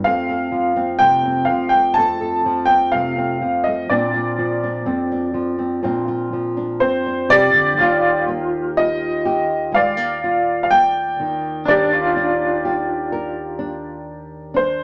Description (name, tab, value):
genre	acoustic folk-pop ballad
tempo	62 BPM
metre	4/4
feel	straight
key	Eb major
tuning	A4 = 441 Hz
part	clear upright piano	melody	0.0-14.8 s	G4 to A5	-20 LUFS	equal	none
part	nylon-string guitar	accompaniment	0.0-14.8 s	Eb2 to Bb4	-25 LUFS	equal	none
part	electric guitar through a small old amp	arpeggios	7.8-14.0 s	D4 to F4	-25 LUFS	equal	tremolo
room	moderate studio reverb, RT60 0.8 s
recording	none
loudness	-19 LUFS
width	mono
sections	0.0-7.8 A section; 7.8-14.8 B section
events	none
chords	0.0 F; 3.9 Bbadd9; 7.8 Ebmaj9